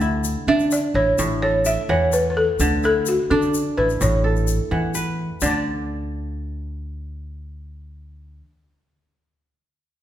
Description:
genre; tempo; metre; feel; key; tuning
west african traditional, West African string and xylophone music; 85 BPM (dotted quarters); 12/8; straight; D major; A4 = 440 Hz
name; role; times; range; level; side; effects
kora; arpeggios; 0.0-8.5 s; A2 to F#5; -23 LUFS; right 2 dB; none
upright bass; bass; 0.0-8.4 s; A1 to D3; -25 LUFS; equal; none
tube shaker; percussion; 0.0-5.6 s; none; -31 LUFS; left 8 dB; none
balafon; melody; 0.5-8.4 s; F#4 to E5; -20 LUFS; equal; none
room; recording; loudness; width
wet recital hall reverb, RT60 1.4 s; recorded in a church or concert hall; -18 LUFS; side -11 dB against mid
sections
0.0-5.4 A section; 5.4-8.2 B section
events
none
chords
0.0 D5; 1.2 A5; 4.0 A; 5.4 N.C.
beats
0.48 1.19 1.90 | 2.60 3.31 4.01 4.71 | 5.42 6.12 6.83 7.53

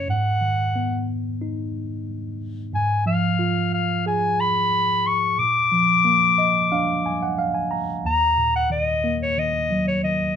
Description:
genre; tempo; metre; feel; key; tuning
acoustic folk-pop ballad; 90 BPM; 4/4; straight; Eb minor; A4 = 440 Hz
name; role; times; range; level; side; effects
bright clarinet; melody; 0.0-10.3 s; Db5 to D6; -20 LUFS; left 3 dB; none
mellow tine electric piano; accompaniment; 0.0-10.4 s; Eb2 to Bb5; -24 LUFS; right 2 dB; none
room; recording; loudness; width
moderate studio reverb, RT60 0.8 s; minimal, uncompressed stereo recording; -19 LUFS; side -8 dB against mid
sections
0.0-8.0 A section; 8.0-10.4 B section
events
none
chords
0.1 Abm7; 2.7 Abm6; 5.4 Bb; 8.0 Ebm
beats
| 0.09 0.75 1.41 2.08 | 2.74 3.40 4.06 4.72 | 5.38 6.05 6.71 7.38 | 8.04 8.71 9.37 10.03

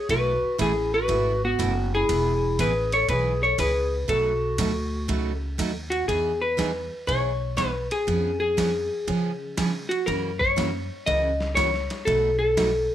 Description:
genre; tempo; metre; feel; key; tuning
country, western swing; 120 BPM; 4/4; swing 66% on 8ths; E major; A4 = 440 Hz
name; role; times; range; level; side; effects
vintage hollow-body jazz guitar; melody; 0.0-12.9 s; F#4 to D#5; -24 LUFS; left 1 dB; plate reverb
breathy clarinet; second line; 0.0-5.5 s; B3 to A4; -31 LUFS; right 1 dB; none
picked steel-string acoustic guitar; accompaniment; 0.1-12.7 s; B2 to G#4; -29 LUFS; right 4 dB; none
upright bass; bass; 0.1-12.9 s; E1 to C#3; -29 LUFS; equal; none
boom bap sampler-style drum kit; drums; 0.1-12.7 s; hi-hat, kick drum, ride cymbal, snare drum; -34 LUFS; equal; none
room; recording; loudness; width
moderate club reverb, RT60 0.7 s; none; -22 LUFS; side -11 dB against mid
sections
0.0-6.1 A section; 6.1-12.9 B section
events
none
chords
0.1 B7sus4; 2.1 E; 4.1 B7; 6.1 Emaj7; 8.1 C#7/E#; 10.1 F#7; 12.1 B7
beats
| 0.09 0.59 1.09 1.59 | 2.09 2.59 3.09 3.59 | 4.08 4.58 5.08 5.58 | 6.08 6.58 7.08 7.58 | 8.08 8.58 9.08 9.57 | 10.07 10.57 11.07 11.57 | 12.07 12.57

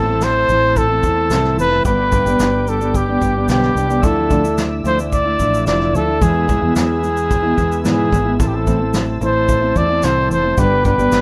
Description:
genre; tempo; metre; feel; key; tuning
acoustic pop; 110 BPM; 4/4; straight; A minor; A4 = 440 Hz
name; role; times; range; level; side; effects
breathy trumpet; melody; 0.0-11.2 s; G4 to D5; -20 LUFS; equal; none
fingerpicked steel-string acoustic guitar; accompaniment; 0.0-11.2 s; E2 to G4; -22 LUFS; equal; none
tonewheel organ; sustained chords; 0.0-11.2 s; B4 to E6; -32 LUFS; equal; chorus vibrato
fretless electric bass; bass; 0.0-11.2 s; F1 to G#2; -24 LUFS; equal; none
vintage brush drum kit; drums; 0.2-11.2 s; kick drum, shaker, snare drum; -23 LUFS; equal; none
room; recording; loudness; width
light reverb; none; -16 LUFS; mono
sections
0.0-11.2 A section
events
none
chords
0.0 Am; 1.9 G; 4.0 Dmadd9; 6.2 E; 8.4 Am; 10.6 G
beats
0.22 0.76 1.31 | 1.85 2.40 2.94 3.49 | 4.03 4.58 5.12 5.67 | 6.21 6.76 7.31 7.85 | 8.40 8.94 9.49 10.03 | 10.58 11.12

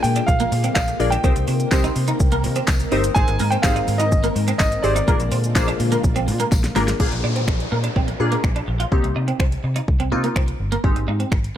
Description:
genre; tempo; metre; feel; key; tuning
dance-pop; 125 BPM; 4/4; straight; unclear; A4 = 440 Hz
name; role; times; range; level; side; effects
warm grand piano; melody; 0.0-6.5 s; D5 to Ab5; -24 LUFS; right 1 dB; ping-pong delay
glassy wavetable pluck; accompaniment; 0.0-11.5 s; Ab3 to D5; -24 LUFS; left 2 dB; chorus, sidechain pumping
string machine, full ensemble; sustained chords; 0.0-7.0 s; D3 to Bb4; -28 LUFS; left 3 dB; ensemble chorus, sidechain pumping
twelve-string electric guitar; riff; 0.0-11.3 s; Bb3 to F4; -27 LUFS; right 3 dB; ensemble chorus
vintage muted fingered electric bass; bass; 0.0-11.5 s; G1 to C3; -22 LUFS; equal; sidechain pumping
deep house drum kit; drums; 0.0-11.6 s; crash cymbal, finger snaps, handclaps, hi-hat, kick drum, shaker, snare drum; -21 LUFS; equal; none
tambourine; percussion; 0.8-6.6 s; none; -38 LUFS; left 5 dB; none
downlifter; sound effects; 7.0-10.8 s; none; -31 LUFS; left 1 dB; none
room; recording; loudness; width
little or no reverb; none; -17 LUFS; side -10 dB against mid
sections
0.0-7.0 A section; 7.0-11.6 B section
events
drum fill 6.5-7.0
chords
0.0 Bb7; 1.2 Cm7; 3.2 Abmaj7; 5.1 Bb7; 8.9 Cm7; 10.8 Abmaj7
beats
0.28 0.76 | 1.24 1.72 2.20 2.68 | 3.16 3.64 4.12 4.60 | 5.08 5.56 6.04 6.52 | 7.00 7.48 7.96 8.44 | 8.92 9.40 9.88 10.36 | 10.84 11.32

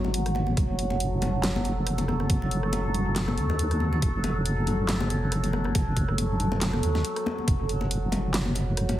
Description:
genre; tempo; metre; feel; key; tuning
deep dubstep; 139 BPM; 4/4; swing 55% on 16ths, half-time; F# dorian; A4 = 438 Hz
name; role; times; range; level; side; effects
overtone-sweeping drone; sustained chords; 0.0-9.0 s; F#3 to A4; -31 LUFS; right 1 dB; chorus, built-in reverb, phaser
deep soft wobble bass; bass; 0.0-9.0 s; F#1 to D#2; -26 LUFS; equal; chorus
congas; percussion; 0.0-9.0 s; none; -32 LUFS; left 3 dB; dub echo
dubstep drum kit; drums; 0.1-9.0 s; handclaps, hi-hat, rim click, snare drum; -31 LUFS; equal; none
electronic kick drum; drums; 0.6-7.6 s; none; -26 LUFS; equal; none
room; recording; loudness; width
light reverb, digital ambience; heavily compressed radio sound, multiband compression; -24 LUFS; side -13 dB against mid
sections
0.0-9.0 A section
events
none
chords
0.0 F#m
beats
0.14 | 0.57 1.00 1.43 1.87 | 2.30 2.73 3.16 3.59 | 4.02 4.46 4.89 5.32 | 5.75 6.18 6.61 7.05 | 7.48 7.91 8.34 8.77

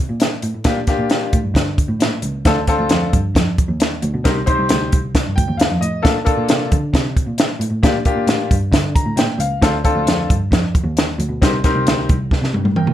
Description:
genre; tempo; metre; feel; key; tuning
uptempo 1960s-style soul; 134 BPM; 4/4; straight; unclear; A4 = 440 Hz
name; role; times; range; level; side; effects
dark cello; bass; 0.0-12.9 s; C2 to D3; -21 LUFS; right 1 dB; none
compact cocktail drum kit; drums; 0.2-12.9 s; hi-hat, kick drum, snare drum, toms; -16 LUFS; equal; none
bright baby grand piano; accompaniment; 0.6-12.9 s; Bb3 to Bb5; -20 LUFS; left 3 dB; none
room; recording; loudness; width
light reverb; none; -15 LUFS; side -12 dB against mid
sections
0.0-12.9 A section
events
grand piano fill 5.1-6.0, 8.7-9.6; drum fill 12.3-12.9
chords
0.0 Bbmaj7(no3); 0.7 Gm7; 2.5 Dm7; 4.2 Cm; 6.0 Bbmaj7; 7.8 Gm7; 9.6 Dm7; 11.4 Cm7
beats
0.20 | 0.65 1.10 1.55 2.00 | 2.45 2.90 3.35 3.80 | 4.25 4.70 5.14 5.59 | 6.04 6.49 6.94 7.39 | 7.83 8.28 8.73 9.18 | 9.63 10.07 10.52 10.97 | 11.42 11.86 12.31 12.76

